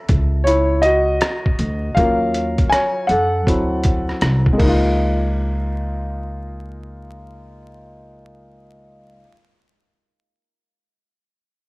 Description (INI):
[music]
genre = hip hop, jazz-hop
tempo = 80 BPM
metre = 4/4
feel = swing 64% on 16ths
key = Db major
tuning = A4 = 440 Hz
[part]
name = warm upright piano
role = accompaniment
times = 0.0-9.3 s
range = Gb3 to Ab5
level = -19 LUFS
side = equal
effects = none
[part]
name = upright bass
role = bass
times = 0.1-9.2 s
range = C2 to Gb2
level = -21 LUFS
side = equal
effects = none
[part]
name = trip hop sampler-style drum kit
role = drums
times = 0.1-4.8 s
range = crash cymbal, hi-hat, kick drum, rim click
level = -20 LUFS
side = equal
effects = none
[sound]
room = little or no reverb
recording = worn, warbling old tape, cassette tape, vinyl crackle, warbly pitch drift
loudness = -15 LUFS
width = side -23 dB against mid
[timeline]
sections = 0.0-5.0 A section; 5.0-8.0 B section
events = upright piano solo 0.0-5.0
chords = 0.0 A6; 2.0 Ebm9; 3.5 D9; 4.6 Db69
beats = 0.47 1.22 | 1.97 2.72 3.47 4.22 | 4.97 5.72 6.47 7.22